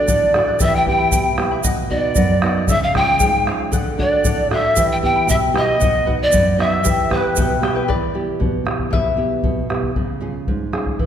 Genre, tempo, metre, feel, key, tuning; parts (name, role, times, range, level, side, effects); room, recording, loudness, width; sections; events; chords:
andean folk, Andean ensemble; 116 BPM; 2/4; straight; E dorian; A4 = 440 Hz
breathy mellow pan flute; melody; 0.0-7.6 s; B4 to G5; -19 LUFS; equal
bright reedy quena; second line; 0.0-7.6 s; B4 to G5; -23 LUFS; equal; slapback echo
charango; accompaniment; 0.0-9.7 s; E4 to B5; -25 LUFS; left 5 dB
nylon-string guitar; accompaniment; 0.0-11.1 s; F#2 to G#4; -22 LUFS; right 3 dB
bombo; percussion; 0.1-11.1 s; -21 LUFS; left 1 dB
egg shaker; percussion; 0.1-7.5 s; -28 LUFS; right 9 dB
wet concert hall reverb, RT60 2.0 s; -15 LUFS; side -9 dB against mid
0.0-7.9 A section; 7.9-11.1 B section
charango solo 7.9-11.1
0.0 D; 0.6 Em; 1.6 B; 2.7 C#; 3.7 D; 4.8 Em; 5.8 B; 6.8 Em; 10.0 C#